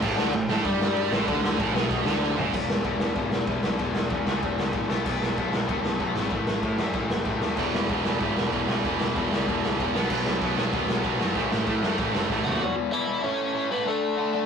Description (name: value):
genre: punk rock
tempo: 191 BPM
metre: 4/4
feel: straight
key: unclear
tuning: A4 = 438 Hz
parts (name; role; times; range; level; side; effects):
- distorted electric guitar; riff; 0.0-14.5 s; E2 to D4; -29 LUFS; left 5 dB; distortion
- tight distorted guitar; riff; 0.0-2.5, 7.6-12.6 s; E2 to B3; -28 LUFS; right 7 dB; distortion
- fuzz picked electric bass; bass; 0.0-12.6 s; E1 to A2; -31 LUFS; equal; overdrive
- raw garage drum kit; drums; 0.0-12.5 s; crash cymbal, kick drum, ride cymbal, snare drum, toms; -27 LUFS; equal; none
- overdriven electric guitar; melody; 12.4-14.5 s; A3 to F#5; -27 LUFS; right 2 dB; none
room: light reverb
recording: rough rehearsal-room recording, warm saturation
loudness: -23 LUFS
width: side -6 dB against mid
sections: 0.0-2.5 A section; 2.5-12.6 B section; 12.6-14.5 C section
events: drum fill 2.2-2.5, 12.3-12.6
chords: 0.0 A9sus4; 2.5 E5; 4.9 B5; 6.3 A5; 7.6 E5; 9.9 B5; 11.4 A5; 12.6 E5; 13.2 A; 13.9 D5